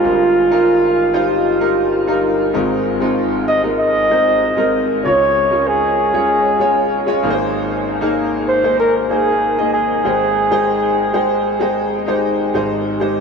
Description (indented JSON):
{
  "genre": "pop",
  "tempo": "96 BPM",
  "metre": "4/4",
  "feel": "straight",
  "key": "Ab major",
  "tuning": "A4 = 438 Hz",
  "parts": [
    { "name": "mellow flugelhorn", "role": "melody", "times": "0.0-11.9 s", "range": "F4 to Eb5", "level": "-16 LUFS", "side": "equal", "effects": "analog delay" },
    { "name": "clear concert grand piano", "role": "accompaniment", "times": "0.0-13.2 s", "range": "G1 to G5", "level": "-17 LUFS", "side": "equal", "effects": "lush chorus" }
  ],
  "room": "wet huge ambient reverb, RT60 8.3 s",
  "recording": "dreamy mix soaked in reverb",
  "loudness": "-13 LUFS",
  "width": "side -5 dB against mid",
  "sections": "0.0-12.5 A section",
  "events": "none",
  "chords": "0.0 Ebadd9/G; 2.5 Abadd9; 5.0 Db; 7.2 Abadd9; 10.0 Abmaj7",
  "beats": "| 0.04 0.67 1.29 1.92 | 2.54 3.17 3.79 4.42 | 5.04 5.67 6.29 6.92 | 7.54 8.17 8.79 9.42 | 10.04 10.67 11.29 11.92 | 12.54 13.17"
}